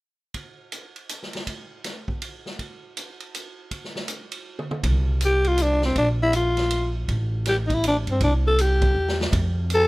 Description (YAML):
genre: jazz, small-group swing and bop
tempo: 160 BPM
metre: 3/4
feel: swing 64% on 8ths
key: C major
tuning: A4 = 440 Hz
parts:
  - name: swinging big-band drum kit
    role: drums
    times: 0.3-9.8 s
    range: hi-hat, kick drum, ride cymbal, snare drum, toms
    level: -30 LUFS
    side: right 1 dB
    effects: none
  - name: upright bass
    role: bass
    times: 4.8-9.9 s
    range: A1 to G2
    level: -22 LUFS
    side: equal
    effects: none
  - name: growling alto saxophone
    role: melody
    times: 5.3-9.9 s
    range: C4 to A4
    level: -21 LUFS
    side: left 1 dB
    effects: none
room: small room ambience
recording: rough home demo mix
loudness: -20 LUFS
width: side -21 dB against mid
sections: 0.3-4.8 A section; 4.8-9.9 B section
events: drum fill 4.5-4.8, 8.9-9.3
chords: 0.3 N.C.; 4.8 C5; 6.0 Bb5; 7.1 N.C.; 8.2 C; 9.3 F